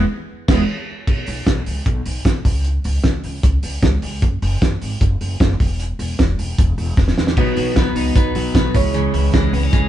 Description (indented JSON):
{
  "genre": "jangly indie pop",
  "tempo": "152 BPM",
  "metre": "4/4",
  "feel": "straight",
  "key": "B major",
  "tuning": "A4 = 440 Hz",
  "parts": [
    { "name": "fingerpicked steel-string acoustic guitar", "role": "accompaniment", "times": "0.0-0.6, 7.4-9.9 s", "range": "B2 to E4", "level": "-23 LUFS", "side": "right 3 dB", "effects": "none" },
    { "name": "reed electric piano", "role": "accompaniment", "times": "0.0-1.1, 7.4-9.9 s", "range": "D#4 to C#5", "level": "-27 LUFS", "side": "right 3 dB", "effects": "none" },
    { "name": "upright bass", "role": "bass", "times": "0.0-9.9 s", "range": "E1 to C#2", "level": "-20 LUFS", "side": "equal", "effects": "none" },
    { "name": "cloth-damped thuddy drum kit", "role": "drums", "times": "0.5-9.8 s", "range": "crash cymbal, hi-hat, kick drum, snare drum", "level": "-18 LUFS", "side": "equal", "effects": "none" },
    { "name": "twelve-string electric guitar", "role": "arpeggios", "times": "7.4-9.9 s", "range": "B2 to D#4", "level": "-21 LUFS", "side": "left 2 dB", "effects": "none" }
  ],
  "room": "light reverb",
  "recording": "band playing live in one room, nothing above 11.0 kHz",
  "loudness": "-15 LUFS",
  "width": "side -12 dB against mid",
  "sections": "0.0-1.1 A section; 1.1-9.9 B section",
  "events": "band accent 0.0-1.1; reed electric piano fill 0.5-1.1; drum fill 7.0-7.4",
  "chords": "0.0 E; 1.1 N.C.; 7.4 B; 8.7 C#m"
}